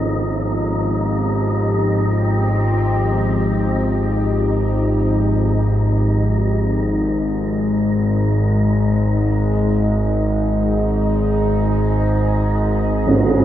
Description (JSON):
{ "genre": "dark ambient drone", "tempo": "free time", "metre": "none", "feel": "none", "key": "unclear", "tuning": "A4 = 442 Hz", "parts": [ { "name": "sweeping resonant pad", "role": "sustained chords", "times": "0.0-13.4 s", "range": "F3 to G#4", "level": "-24 LUFS", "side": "equal", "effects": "chorus, phaser" }, { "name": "analog drone", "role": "drone", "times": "0.0-13.4 s", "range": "G#1 to G#2", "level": "-17 LUFS", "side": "equal", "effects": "chorus" }, { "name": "wind-like tuned noise texture", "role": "texture", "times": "0.0-13.4 s", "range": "D#4 to D#5", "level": "-28 LUFS", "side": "equal", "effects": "built-in reverb" }, { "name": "tam-tam", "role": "percussion", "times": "13.1-13.3 s", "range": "none", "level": "-23 LUFS", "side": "right 2 dB", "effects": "low-pass filter on cymbals" } ], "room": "moderate huge ambient reverb, RT60 8.0 s", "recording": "none", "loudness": "-16 LUFS", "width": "side -11 dB against mid", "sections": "0.0-13.4 A section", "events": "fade-out on analog synth pad 0.0-13.4; fade-out on synth texture 0.0-13.4", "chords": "0.0 Fm; 7.0 G#5", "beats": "free time" }